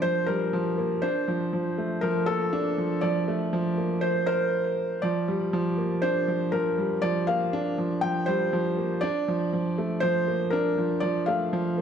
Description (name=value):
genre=electronica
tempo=120 BPM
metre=4/4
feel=straight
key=G minor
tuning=A4 = 438 Hz
part: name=felt-muted upright piano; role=melody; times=0.0-11.7 s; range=A4 to G5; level=-27 LUFS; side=equal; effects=tape echo
part: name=warm upright piano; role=riff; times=0.0-11.8 s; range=F3 to D4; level=-26 LUFS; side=right 1 dB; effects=none
room=wet echo chamber reverb, RT60 1.6 s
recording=none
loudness=-24 LUFS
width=side -8 dB against mid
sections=0.0-5.0 A section; 5.0-11.8 B section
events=build-up 0.0-5.0; drop 5.0-11.8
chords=0.0 Gm7; 1.0 Bbmaj7; 5.0 Gm7; 9.0 Bbmaj7